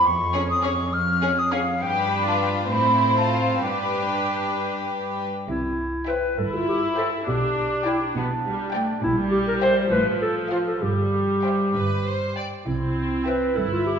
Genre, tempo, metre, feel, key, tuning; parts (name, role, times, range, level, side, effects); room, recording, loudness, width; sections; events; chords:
cinematic, playful, whimsical film cue; 67 BPM (dotted quarters); 6/8; straight; C major; A4 = 442 Hz
silver concert flute; second line; 0.0-4.6 s; F5 to F6; -22 LUFS; equal
warm studio cello section; bass; 0.0-14.0 s; F2 to C3; -30 LUFS; right 2 dB
warm studio violin section; melody; 0.3-13.5 s; B4 to G5; -31 LUFS; left 4 dB
rich studio violin section; second line; 0.3-13.5 s; E4 to G5; -31 LUFS; left 2 dB
warm studio viola section; accompaniment; 0.3-14.0 s; F3 to E4; -27 LUFS; right 1 dB
mellow clarinet; second line; 5.5-14.0 s; D4 to C5; -24 LUFS; equal
dark studio double bass section; bass; 5.5-14.0 s; G1 to C2; -31 LUFS; right 2 dB
wet recital hall reverb, RT60 1.8 s; recorded in a church or concert hall, nothing above 7.7 kHz; -21 LUFS; side -7 dB against mid
0.0-5.5 A section; 5.5-14.0 B section
0.0 Db/F; 1.8 G; 2.7 Am; 3.6 G; 5.5 C; 7.3 G/B; 9.0 C7/Bb; 9.9 F/A; 10.8 C/G; 12.7 C